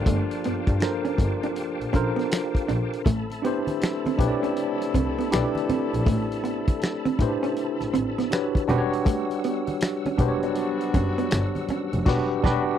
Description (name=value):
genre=R&B, neo-soul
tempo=80 BPM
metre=4/4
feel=swing 63% on 16ths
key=unclear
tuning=A4 = 440 Hz
part: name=tine electric piano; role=accompaniment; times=0.0-12.8 s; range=D4 to D5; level=-26 LUFS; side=equal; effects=medium stereo tremolo
part: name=bright tonewheel organ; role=sustained chords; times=0.0-12.8 s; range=G3 to E6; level=-38 LUFS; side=equal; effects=slow rotary speaker, chorus vibrato
part: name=warm horn section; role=stabs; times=0.0-12.6 s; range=F3 to A4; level=-34 LUFS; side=left 5 dB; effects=none
part: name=hollow-body jazz guitar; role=second line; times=0.1-11.9 s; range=A3 to D4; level=-28 LUFS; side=right 4 dB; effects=none
part: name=rich double bass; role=bass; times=0.1-12.5 s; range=E1 to A2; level=-28 LUFS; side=equal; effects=none
part: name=warm soul drum kit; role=drums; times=0.1-12.7 s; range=crash cymbal, finger snaps, hi-hat, kick drum, snare drum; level=-24 LUFS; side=equal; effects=none
part: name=congas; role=percussion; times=3.1-11.9 s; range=none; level=-36 LUFS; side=right 2 dB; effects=none
room=little or no reverb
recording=dry, close 1970s-style studio recording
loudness=-22 LUFS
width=side -9 dB against mid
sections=0.0-12.8 A section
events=band accent 12.1-12.8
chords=0.0 Gm9; 3.1 Am9; 8.7 Em9